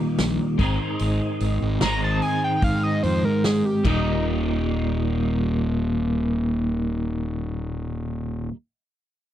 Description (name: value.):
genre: psychedelic rock.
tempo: 74 BPM.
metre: 4/4.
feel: straight.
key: Eb major.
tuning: A4 = 440 Hz.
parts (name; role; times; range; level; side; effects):
twelve-string electric guitar; riff; 0.0-8.5 s; Eb2 to Eb4; -24 LUFS; equal; rotary speaker, double-tracked left and right.
fuzz fingered electric bass; bass; 0.2-8.5 s; Eb1 to Ab2; -26 LUFS; equal; overdrive.
vintage drum kit; drums; 0.2-4.0 s; crash cymbal, hi-hat, kick drum, snare drum; -26 LUFS; equal; none.
overdriven synth lead; melody; 1.8-4.2 s; Eb4 to Bb5; -26 LUFS; equal; distortion, tape echo.
room: little or no reverb.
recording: dry, close 1970s-style studio recording.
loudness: -21 LUFS.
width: side -11 dB against mid.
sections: 0.0-4.3 A section; 4.3-7.5 B section.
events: analog synth lead solo 0.0-4.3; drum fill 3.8-4.3.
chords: 0.0 Eb; 0.6 Ab; 3.8 Eb.